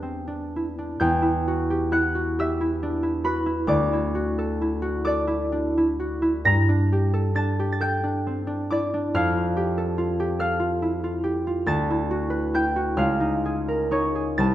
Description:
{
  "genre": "classical, solo harp piece",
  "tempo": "41-48 BPM (dotted quarters)",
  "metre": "6/8",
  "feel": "rubato",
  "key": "E minor",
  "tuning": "A4 = 440 Hz",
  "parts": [
    { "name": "concert harp", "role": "solo", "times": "0.0-14.5 s", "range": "C2 to Bb6", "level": "-21 LUFS", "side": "equal", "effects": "none" }
  ],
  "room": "wet recital hall reverb, RT60 1.4 s",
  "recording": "none",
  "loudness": "-22 LUFS",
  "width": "side -13 dB against mid",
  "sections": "1.0-14.5 A section",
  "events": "none",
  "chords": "0.0 Em7; 1.0 Emadd9; 3.7 Dadd9; 6.5 Gmadd9; 9.1 Fadd9; 11.7 D69; 13.0 C#69"
}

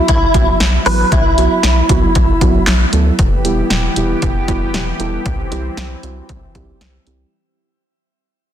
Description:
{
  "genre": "synth-pop",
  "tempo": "116 BPM",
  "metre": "4/4",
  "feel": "straight",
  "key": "E minor",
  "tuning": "A4 = 440 Hz",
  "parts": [
    { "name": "direct-recorded clean electric guitar", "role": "melody", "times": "0.0-2.6 s", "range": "E4 to B4", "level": "-16 LUFS", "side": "equal", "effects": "ensemble chorus, digital delay, shimmer reverb" },
    { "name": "muted felt-like synth keys", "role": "accompaniment", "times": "0.0-7.3 s", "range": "F#3 to A4", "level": "-20 LUFS", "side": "right 4 dB", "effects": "chorus, low-pass filter, shimmer reverb" },
    { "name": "rubbery square bass", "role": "bass", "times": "0.1-7.2 s", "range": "E1 to D2", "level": "-17 LUFS", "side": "equal", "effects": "none" },
    { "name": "punchy analog drum machine", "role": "drums", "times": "0.1-7.2 s", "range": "handclaps, hi-hat, kick drum, snare drum", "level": "-16 LUFS", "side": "equal", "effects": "none" },
    { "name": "lush unison pad", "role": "sustained chords", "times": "3.2-7.3 s", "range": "E3 to G4", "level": "-23 LUFS", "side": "equal", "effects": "chorus, low-pass filter, shimmer reverb" }
  ],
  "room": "light reverb",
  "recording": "dense, heavily limited modern master",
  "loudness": "-12 LUFS",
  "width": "side -10 dB against mid",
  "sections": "0.0-3.2 A section; 3.2-7.3 B section",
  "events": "fade-out 3.2-7.3; filter sweep 3.2-7.3",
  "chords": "0.0 Bsus4; 3.2 Em; 5.3 C"
}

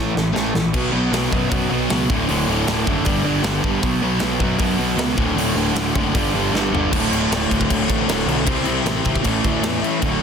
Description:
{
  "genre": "punk rock",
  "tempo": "155 BPM",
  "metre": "4/4",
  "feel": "straight",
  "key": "D major",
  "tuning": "A4 = 440 Hz",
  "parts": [
    { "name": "distorted electric guitar", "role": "riff", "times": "0.0-10.2 s", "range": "D2 to C4", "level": "-23 LUFS", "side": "right 11 dB", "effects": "distortion" },
    { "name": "sludgy distorted guitar", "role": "riff", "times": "0.0-10.2 s", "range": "D2 to C5", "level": "-23 LUFS", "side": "left 10 dB", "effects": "overdrive" },
    { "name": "fuzz picked electric bass", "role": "bass", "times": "0.0-10.2 s", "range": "D1 to A2", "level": "-25 LUFS", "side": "equal", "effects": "overdrive" },
    { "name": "tight metal drum kit", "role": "drums", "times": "0.2-10.1 s", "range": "crash cymbal, hi-hat, kick drum, snare drum, toms", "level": "-23 LUFS", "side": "equal", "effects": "none" },
    { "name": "distorted electric guitar", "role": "riff", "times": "0.7-10.2 s", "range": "D2 to C4", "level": "-25 LUFS", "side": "left 1 dB", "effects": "distortion" }
  ],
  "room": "light reverb",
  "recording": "dense, heavily limited modern master",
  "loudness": "-17 LUFS",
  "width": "side -7 dB against mid",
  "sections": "0.7-6.9 A section; 6.9-10.2 B section",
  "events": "drum fill 0.0-0.7, 6.5-6.9",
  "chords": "0.0 A5; 0.7 B5; 2.1 D; 3.1 G5; 3.8 B5; 5.2 D; 6.2 G5; 6.9 D; 8.5 C; 9.2 A"
}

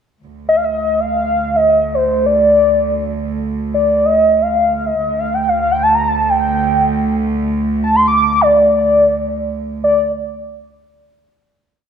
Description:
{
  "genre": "persian",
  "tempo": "free time",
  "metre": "none",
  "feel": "none",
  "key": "D dastgah shur",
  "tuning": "A4 = 437 Hz",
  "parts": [
    { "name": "warm studio cello section", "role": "drone", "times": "0.2-9.9 s", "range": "D2", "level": "-20 LUFS", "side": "right 3 dB", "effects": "none" },
    { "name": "warm velvety synth lead", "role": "melody", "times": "0.5-10.1 s", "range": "C5 to D6", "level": "-13 LUFS", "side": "equal", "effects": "chorus" }
  ],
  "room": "wet recital hall reverb, RT60 1.5 s",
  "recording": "none",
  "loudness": "-12 LUFS",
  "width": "side -8 dB against mid",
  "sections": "0.2-9.8 free-time section; 9.8-11.9 final note",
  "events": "none",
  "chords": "none"
}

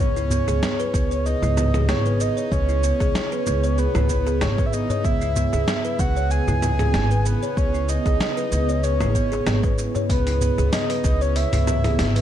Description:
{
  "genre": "organic downtempo",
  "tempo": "95 BPM",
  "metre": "4/4",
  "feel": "swing 54% on 16ths",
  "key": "C# minor",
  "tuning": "A4 = 440 Hz",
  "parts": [
    { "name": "breathy flute-like synth lead", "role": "melody", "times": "0.0-12.2 s", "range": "B4 to G#5", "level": "-26 LUFS", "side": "right 1 dB", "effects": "wide subtle chorus, ping-pong delay" },
    { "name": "warbly tape-like pad", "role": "sustained chords", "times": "0.0-12.2 s", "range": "C#3 to C#5", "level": "-31 LUFS", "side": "right 1 dB", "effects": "chorus, built-in reverb, sidechain pumping" },
    { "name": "kalimba", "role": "arpeggios", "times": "0.0-12.2 s", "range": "B3 to C#5", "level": "-27 LUFS", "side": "equal", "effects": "ping-pong delay" },
    { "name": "upright bass", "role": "bass", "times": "0.0-12.2 s", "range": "G#1 to C#2", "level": "-22 LUFS", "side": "equal", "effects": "sidechain pumping" },
    { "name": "dusty soul sampler-style drum kit", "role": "drums", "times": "0.2-12.2 s", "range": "cabasa, hi-hat, snare drum, toms", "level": "-27 LUFS", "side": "equal", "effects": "none" },
    { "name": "darbuka", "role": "percussion", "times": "0.3-11.8 s", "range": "none", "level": "-29 LUFS", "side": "left 2 dB", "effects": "none" },
    { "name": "electronic kick drum", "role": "drums", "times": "0.9-11.2 s", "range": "none", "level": "-23 LUFS", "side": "equal", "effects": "none" }
  ],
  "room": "light reverb",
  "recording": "dark, warm production",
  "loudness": "-19 LUFS",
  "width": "side -10 dB against mid",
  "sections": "0.0-12.2 A section",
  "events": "none",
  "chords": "0.0 C#m7"
}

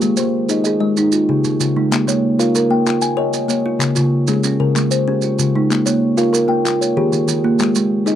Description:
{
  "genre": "southern african traditional, mbira-style interlocking cycle",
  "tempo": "127 BPM (dotted quarters)",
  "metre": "12/8",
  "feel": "straight",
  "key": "Bb dorian",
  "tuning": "A4 = 440 Hz",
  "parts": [
    { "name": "kalimba", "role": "arpeggios", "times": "0.0-8.2 s", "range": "Db3 to Ab5", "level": "-17 LUFS", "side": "left 4 dB", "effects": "none" },
    { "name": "kalimba", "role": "arpeggios", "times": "0.0-8.2 s", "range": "Db3 to F5", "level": "-18 LUFS", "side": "right 4 dB", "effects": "none" },
    { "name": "maracas", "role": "percussion", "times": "0.0-8.2 s", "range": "none", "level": "-25 LUFS", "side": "right 10 dB", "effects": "none" },
    { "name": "group handclap", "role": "percussion", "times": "1.9-8.2 s", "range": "none", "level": "-25 LUFS", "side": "left 6 dB", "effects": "none" }
  ],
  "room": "light reverb",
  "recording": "dry, close 1970s-style studio recording",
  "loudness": "-14 LUFS",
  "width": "side -10 dB against mid",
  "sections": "0.0-1.9 A section; 1.9-8.2 B section",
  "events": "none",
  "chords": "0.0 Ab; 1.0 Db; 1.9 Bbm; 3.8 Db; 5.7 Bbm; 6.7 Eb; 7.6 Ab5"
}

